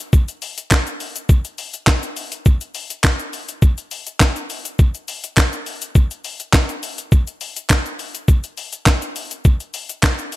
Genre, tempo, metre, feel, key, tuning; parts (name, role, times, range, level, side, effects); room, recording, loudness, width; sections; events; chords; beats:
pop; 103 BPM; 4/4; straight
breakbeat sampler-style drum kit; drums; 0.1-10.4 s; handclaps, hi-hat, kick drum, shaker, snare drum; -16 LUFS; equal
group handclap; percussion; 0.7-10.2 s; barely audible
digital ambience; -16 LUFS; side -17 dB against mid
0.0-10.4 A section
0.13 0.71 | 1.29 1.88 2.46 3.04 | 3.62 4.21 4.79 5.37 | 5.95 6.54 7.12 7.70 | 8.28 8.87 9.45 10.03